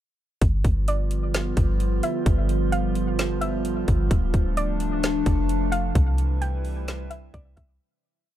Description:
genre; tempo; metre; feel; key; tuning
hip hop, atmospheric cloud-rap; 130 BPM; 4/4; half-time; unclear; A4 = 443 Hz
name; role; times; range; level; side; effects
warbly tape-like pad; sustained chords; 0.9-7.8 s; C3 to B4; -27 LUFS; right 1 dB; chorus, built-in reverb, sidechain pumping
soft 808-style bass; bass; 0.4-7.8 s; D1 to C2; -24 LUFS; equal; none
trap drum kit; drums; 0.4-7.7 s; hi-hat, kick drum, snare drum; -24 LUFS; equal; none
drifting glass-harmonics texture; texture; 0.8-7.8 s; B3 to E5; -38 LUFS; right 1 dB; chorus, built-in reverb
soft round pluck; melody; 0.9-7.8 s; D5 to G5; -32 LUFS; right 1 dB; chorus, tape echo
room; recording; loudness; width
little or no reverb; dark, warm production; -21 LUFS; side -12 dB against mid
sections
0.4-7.8 verse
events
fade-out 6.0-7.8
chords
0.4 G7; 4.1 Dm; 6.0 Cmaj7

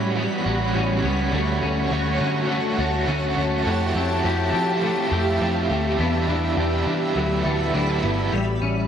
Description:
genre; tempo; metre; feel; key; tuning
dream pop; 103 BPM; 4/4; straight; A mixolydian; A4 = 440 Hz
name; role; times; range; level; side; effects
overdriven electric guitar; accompaniment; 0.0-8.3 s; E2 to G4; -25 LUFS; right 4 dB; tremolo, wide subtle chorus
shimmering ambient pad; sustained chords; 0.0-8.9 s; G3 to B5; -26 LUFS; right 1 dB; chorus, built-in reverb
clean electric guitar; arpeggios; 0.0-8.9 s; F#3 to A4; -27 LUFS; left 5 dB; ensemble chorus, tape echo
vintage muted picked electric bass; bass; 0.0-8.9 s; G1 to F3; -25 LUFS; equal; none
room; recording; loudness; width
moderate plate reverb, RT60 2.8 s; none; -20 LUFS; side -8 dB against mid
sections
0.0-8.3 A section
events
none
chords
0.0 A13; 1.3 Dmaj7; 3.7 Fmaj9; 6.0 Em7; 7.2 D69; 8.3 A13

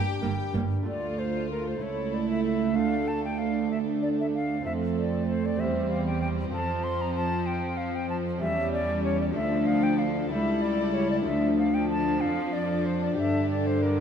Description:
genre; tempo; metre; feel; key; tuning
classical, baroque-style concerto movement with solo episodes; 63 BPM (dotted quarters); 6/8; straight; D minor; A4 = 441 Hz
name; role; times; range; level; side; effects
bright concert flute; melody; 0.0-14.0 s; Bb4 to C6; -32 LUFS; left 1 dB; none
rich chamber violin section; melody; 0.0-14.0 s; G4 to G5; -43 LUFS; left 6 dB; none
clear studio violin section; second line; 0.0-14.0 s; C4 to G4; -31 LUFS; left 4 dB; none
lute; accompaniment; 0.0-14.0 s; D2 to A4; -34 LUFS; left 4 dB; none
rich chamber viola section; accompaniment; 0.2-14.0 s; D3 to Bb3; -31 LUFS; right 6 dB; none
clear chamber double bass section; bass; 0.2-0.6 s; G1; -31 LUFS; right 3 dB; none
rich symphonic cello section; bass; 0.2-14.0 s; C#2 to G2; -30 LUFS; right 3 dB; none
room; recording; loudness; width
wet concert hall reverb, RT60 2.1 s; none; -24 LUFS; side -7 dB against mid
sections
0.9-14.0 A section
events
none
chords
0.0 Gm; 0.9 Dm; 1.8 A/C#; 2.8 Dm; 4.7 F; 5.6 C/E; 6.5 F; 8.4 A7/E; 9.4 Dm; 10.3 A7/C#; 11.3 Dm; 12.2 Dm/F; 13.2 G5

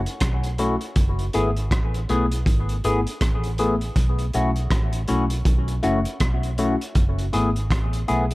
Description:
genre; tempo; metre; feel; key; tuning
lovers rock reggae; 80 BPM; 4/4; swing 60% on 16ths; F# minor; A4 = 440 Hz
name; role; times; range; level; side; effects
vintage muted fingered electric bass; bass; 0.0-8.3 s; F#1 to B1; -24 LUFS; equal; none
crunchy breakbeat drum kit; drums; 0.1-8.3 s; hi-hat, kick drum, rim click; -23 LUFS; equal; none
barky tine electric piano; accompaniment; 0.6-8.3 s; A3 to G#4; -24 LUFS; left 2 dB; overdrive, phaser, tape echo
room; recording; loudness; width
light reverb, small room ambience; none; -20 LUFS; side -20 dB against mid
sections
0.0-8.3 A section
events
none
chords
0.0 B7sus4; 1.0 F#m11 (rootless); 4.0 B7sus4; 7.0 F#m11

